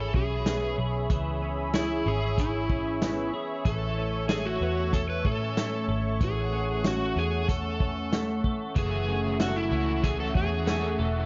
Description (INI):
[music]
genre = dream pop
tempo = 94 BPM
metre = 4/4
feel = straight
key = A major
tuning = A4 = 441 Hz
[part]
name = overdriven slide guitar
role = melody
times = 0.0-11.0 s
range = E4 to B4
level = -34 LUFS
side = equal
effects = digital delay
[part]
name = warm analog pad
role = sustained chords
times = 0.0-11.3 s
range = A3 to C#6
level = -36 LUFS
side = equal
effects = chorus
[part]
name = twelve-string electric guitar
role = arpeggios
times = 0.0-11.3 s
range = E3 to A4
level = -37 LUFS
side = equal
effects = analog chorus, digital delay
[part]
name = vintage muted picked electric bass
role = bass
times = 0.0-11.3 s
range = E1 to A2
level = -33 LUFS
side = equal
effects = none
[part]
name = vintage drum kit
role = drums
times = 0.1-10.8 s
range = hi-hat, kick drum, snare drum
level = -31 LUFS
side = equal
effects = none
[part]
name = crunchy overdriven guitar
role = accompaniment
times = 8.8-11.3 s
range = F#2 to F#4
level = -39 LUFS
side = equal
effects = tremolo, ensemble chorus
[sound]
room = light reverb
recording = dark, warm production, nothing above 7.5 kHz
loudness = -28 LUFS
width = mono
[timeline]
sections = 0.0-11.3 A section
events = none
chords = 0.0 C#m7; 3.7 A; 8.8 F#m7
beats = 0.46 | 1.10 1.74 2.38 3.02 | 3.65 4.29 4.93 5.57 | 6.21 6.85 7.49 8.12 | 8.76 9.40 10.04 10.68